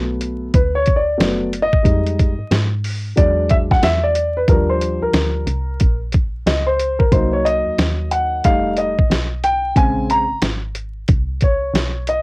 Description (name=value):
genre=hip hop, jazz-hop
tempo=91 BPM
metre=4/4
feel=swing 62% on 16ths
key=unclear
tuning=A4 = 440 Hz
part: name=dark concert grand piano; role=accompaniment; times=0.0-12.2 s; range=Db3 to Bb5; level=-18 LUFS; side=equal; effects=cassette tape
part: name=woody FM bass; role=bass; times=0.0-12.2 s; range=F1 to Ab2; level=-22 LUFS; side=equal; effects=transformer saturation
part: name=boom bap sampler-style drum kit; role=drums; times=0.2-12.2 s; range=hi-hat, kick drum, snare drum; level=-16 LUFS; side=equal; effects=vintage 12-bit sampler grit
room=little or no reverb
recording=home recording on cassette, vinyl crackle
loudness=-15 LUFS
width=side -24 dB against mid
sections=0.0-12.2 A section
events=grand piano solo 0.0-12.2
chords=0.0 Gmaj7 (rootless); 1.9 Fm7; 3.2 E9; 4.5 Ebmaj7; 7.1 Cm7b5; 8.4 F7; 9.8 Bbm7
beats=0.53 1.19 | 1.85 2.51 3.17 3.83 | 4.49 5.15 5.81 6.47 | 7.13 7.79 8.45 9.10 | 9.76 10.42 11.08 11.74